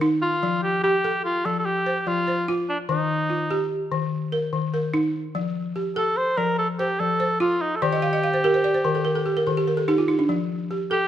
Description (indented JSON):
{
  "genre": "west african traditional",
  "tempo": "97 BPM (dotted quarters)",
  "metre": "12/8",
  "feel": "straight",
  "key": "F mixolydian",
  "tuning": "A4 = 438 Hz",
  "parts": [
    { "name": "balafon", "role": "arpeggios", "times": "0.0-11.1 s", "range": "Eb3 to F5", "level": "-23 LUFS", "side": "equal", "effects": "none" },
    { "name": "warm cor anglais", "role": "melody", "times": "0.2-11.1 s", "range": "D4 to C5", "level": "-23 LUFS", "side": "equal", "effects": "none" }
  ],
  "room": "wet recital hall reverb, RT60 1.4 s",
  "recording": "none",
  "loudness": "-21 LUFS",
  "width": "side -11 dB against mid",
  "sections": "0.0-11.1 A section",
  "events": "balafon fill 7.8-10.3",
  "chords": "0.4 F; 2.9 Eb; 5.4 F; 7.8 Eb; 10.3 F",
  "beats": "| 0.42 1.04 1.65 2.27 | 2.89 3.50 4.12 4.74 | 5.35 5.97 6.58 7.20 | 7.82 8.44 9.05 9.67 | 10.29 10.91"
}